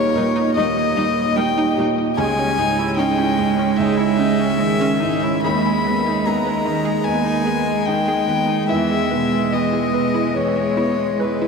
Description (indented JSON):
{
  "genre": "neoclassical piano and strings",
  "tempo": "74 BPM",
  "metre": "4/4",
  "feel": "rubato",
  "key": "G# harmonic minor",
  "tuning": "A4 = 440 Hz",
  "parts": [
    { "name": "rich violin", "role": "melody", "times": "0.0-11.5 s", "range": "B4 to B5", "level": "-22 LUFS", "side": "left 5 dB", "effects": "analog delay" },
    { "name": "felt-muted upright piano", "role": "accompaniment", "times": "0.0-11.5 s", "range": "C#2 to B5", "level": "-23 LUFS", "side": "right 2 dB", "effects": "wide subtle chorus" },
    { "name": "warbly tape-like pad", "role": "sustained chords", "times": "0.0-11.5 s", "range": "G#3 to D#5", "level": "-26 LUFS", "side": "left 1 dB", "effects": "chorus, built-in reverb" },
    { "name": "analog pluck", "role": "arpeggios", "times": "0.0-11.5 s", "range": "C#4 to G#5", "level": "-27 LUFS", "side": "right 2 dB", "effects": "chorus, analog delay" },
    { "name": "clear cello", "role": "second line", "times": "0.2-11.5 s", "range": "G3 to G#3", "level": "-23 LUFS", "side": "right 4 dB", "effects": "analog delay" },
    { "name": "rich viola", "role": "accompaniment", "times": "0.2-11.5 s", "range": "D#3 to E4", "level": "-26 LUFS", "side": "right 1 dB", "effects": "none" }
  ],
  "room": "wet huge ambient reverb, RT60 7.4 s",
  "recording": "dreamy mix soaked in reverb",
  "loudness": "-16 LUFS",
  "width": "side -5 dB against mid",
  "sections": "0.0-11.5 A section",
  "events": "none",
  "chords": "0.0 D#; 2.2 C#madd9; 5.4 G#m/D#; 8.7 E"
}